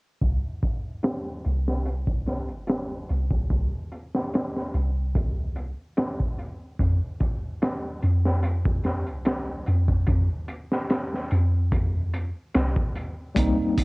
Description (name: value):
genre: trip hop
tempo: 73 BPM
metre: 4/4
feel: swing 54% on 16ths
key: C minor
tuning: A4 = 441 Hz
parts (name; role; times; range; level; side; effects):
- soft 808-style bass; bass; 0.2-13.6 s; G1 to F2; -24 LUFS; equal; transformer saturation
- crunchy breakbeat drum kit; drums; 0.2-13.8 s; hi-hat, kick drum, snare drum; -26 LUFS; equal; low-pass filter on kick, cassette tape, low-pass filter on hats, low-pass filter on snare, low-pass filter on room
- tine electric piano; accompaniment; 13.3-13.8 s; G3 to Eb4; -22 LUFS; left 1 dB; fast stereo tremolo, low-pass filter
room: small room ambience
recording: home recording on cassette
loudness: -23 LUFS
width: side -27 dB against mid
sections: 0.2-13.4 A section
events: none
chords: 0.2 C5; 6.8 F5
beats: | 0.22 1.04 1.86 2.68 | 3.50 4.33 5.15 5.97 | 6.79 7.61 8.44 9.26 | 10.08 10.90 11.72 12.54 | 13.37